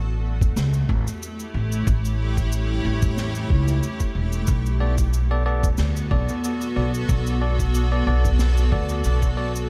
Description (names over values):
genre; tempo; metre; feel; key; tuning
ambient dub; 92 BPM; 4/4; swing 54% on 16ths; B minor; A4 = 436 Hz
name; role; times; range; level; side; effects
granular cloud pad; sustained chords; 0.0-9.7 s; A3 to D5; -31 LUFS; equal; built-in reverb
upright bass; bass; 0.0-9.7 s; E1 to D2; -24 LUFS; equal; none
electronic kick drum; drums; 0.4-9.3 s; none; -25 LUFS; equal; none
soft-mallet drum kit; drums; 0.4-9.7 s; cabasa, snare drum, toms; -34 LUFS; equal; dub echo
bell-like tine electric piano; stabs; 4.8-9.5 s; B3 to D5; -32 LUFS; equal; dub echo
room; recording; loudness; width
small room reverb; none; -22 LUFS; mono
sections
0.0-9.7 A section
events
none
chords
0.0 A7; 4.5 Bm7